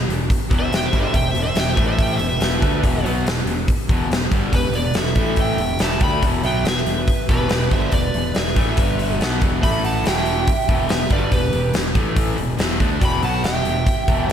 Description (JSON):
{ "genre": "blues rock power trio and southern rock", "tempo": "141 BPM", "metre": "4/4", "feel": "straight", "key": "E minor", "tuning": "A4 = 440 Hz", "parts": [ { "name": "fuzz guitar", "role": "riff", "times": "0.0-14.3 s", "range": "E2 to D4", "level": "-23 LUFS", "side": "left 1 dB", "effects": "distortion, slapback echo" }, { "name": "fuzz fingered electric bass", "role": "bass", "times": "0.0-14.3 s", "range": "E1 to D2", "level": "-25 LUFS", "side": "equal", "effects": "overdrive" }, { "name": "huge arena drum kit", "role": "drums", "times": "0.1-14.3 s", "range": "hi-hat, kick drum, snare drum", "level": "-20 LUFS", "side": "equal", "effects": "none" }, { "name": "overdriven slide guitar", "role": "melody", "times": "0.6-14.3 s", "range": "B4 to B5", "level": "-25 LUFS", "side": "equal", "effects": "none" }, { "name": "biting lead guitar", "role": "second line", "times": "0.6-14.3 s", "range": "G4 to G5", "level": "-29 LUFS", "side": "right 6 dB", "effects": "overdrive, slapback echo" } ], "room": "moderate recital hall reverb, RT60 1.5 s", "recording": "big arena sound", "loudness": "-17 LUFS", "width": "side -9 dB against mid", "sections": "0.0-14.3 A section", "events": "none", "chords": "0.0 Em; 1.8 A5; 2.2 Em; 5.2 A5; 5.6 Em; 8.8 G5; 9.2 E5; 9.6 A5; 10.1 Em; 12.0 A5; 12.4 Em", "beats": "| 0.29 0.72 1.14 1.56 | 1.99 2.41 2.84 3.26 | 3.69 4.11 4.53 4.96 | 5.38 5.81 6.23 6.66 | 7.08 7.50 7.93 8.35 | 8.78 9.20 9.63 10.05 | 10.48 10.90 11.32 11.75 | 12.18 12.60 13.03 13.45 | 13.88 14.30" }